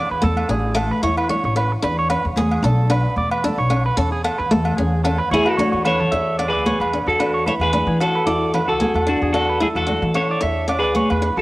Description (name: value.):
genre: highlife guitar band.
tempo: 112 BPM.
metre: 4/4.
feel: swing 54% on 16ths.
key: E mixolydian.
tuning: A4 = 438 Hz.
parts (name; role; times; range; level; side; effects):
picked old ladder-braced acoustic guitar; accompaniment; 0.0-11.4 s; A3 to E4; -25 LUFS; left 2 dB; cassette tape.
electric guitar at the edge of break-up; arpeggios; 0.0-11.4 s; F#4 to E5; -23 LUFS; right 2 dB; cassette tape, tape echo.
upright bass; bass; 0.1-11.4 s; A1 to E3; -22 LUFS; equal; none.
congas; percussion; 0.2-11.1 s; none; -25 LUFS; equal; none.
agogo bells; percussion; 0.4-11.2 s; none; -28 LUFS; equal; none.
clean electric guitar; melody; 5.3-11.4 s; D4 to C#5; -20 LUFS; equal; lush chorus, cassette tape.
room: light reverb, studio reverb.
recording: home recording on cassette.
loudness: -16 LUFS.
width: side -19 dB against mid.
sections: 0.0-6.1 A section; 6.1-11.4 B section.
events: drum fill 5.7-6.1.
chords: 0.0 Dsus2; 1.8 E7sus4; 4.0 Amaj7/E; 6.1 E7sus4; 8.3 Dadd9; 10.4 E7sus4.